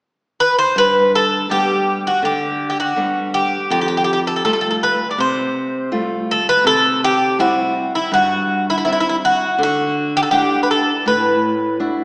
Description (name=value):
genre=greek folk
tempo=81 BPM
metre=4/4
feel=straight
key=G major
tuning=A4 = 439 Hz
part: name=Greek bouzouki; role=melody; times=0.4-11.8 s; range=E4 to D5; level=-15 LUFS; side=equal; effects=none
part: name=flamenco guitar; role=accompaniment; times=0.8-12.0 s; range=F2 to F#5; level=-21 LUFS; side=equal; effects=none
room=wet concert hall reverb, RT60 1.9 s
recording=recorded in a church or concert hall, small speaker sound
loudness=-14 LUFS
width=side -34 dB against mid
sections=0.8-12.0 A section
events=none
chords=0.0 N.C.; 0.8 G; 3.7 Fadd9; 6.6 C; 9.6 Dadd9